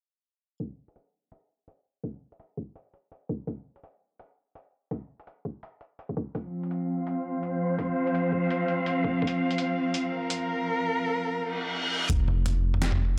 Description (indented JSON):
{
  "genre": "half-time drum and bass",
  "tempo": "167 BPM",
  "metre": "4/4",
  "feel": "swing 57% on 16ths, half-time",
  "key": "unclear",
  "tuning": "A4 = 440 Hz",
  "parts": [
    { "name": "boom bap sampler-style drum kit", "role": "drums", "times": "0.6-13.0 s", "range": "hi-hat, snare drum, toms", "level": "-36 LUFS", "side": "equal", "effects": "none" },
    { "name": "electronic kick drum", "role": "drums", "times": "0.6-9.3, 12.1-12.2 s", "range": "none", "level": "-35 LUFS", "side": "equal", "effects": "high-pass filter on kick" },
    { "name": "warm symphonic cello section", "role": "sustained chords", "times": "6.3-12.1 s", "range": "F3 to F5", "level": "-29 LUFS", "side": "equal", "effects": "sidechain pumping" },
    { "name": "reverse cymbal", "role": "sound effects", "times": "11.5-12.1 s", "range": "none", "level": "-32 LUFS", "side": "equal", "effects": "none" },
    { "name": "long sustained 808-style bass", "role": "bass", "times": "12.1-13.2 s", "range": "F1", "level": "-27 LUFS", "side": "equal", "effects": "none" }
  ],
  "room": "moderate spring reverb, RT60 2.0 s",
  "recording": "echo-heavy mix, low-pass filter",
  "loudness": "-29 LUFS",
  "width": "mono",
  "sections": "0.6-12.1 A section; 12.1-13.2 B section",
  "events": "filter sweep 0.6-12.1; reverse cymbal 11.5-12.1",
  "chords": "0.6 F5; 12.1 N.C."
}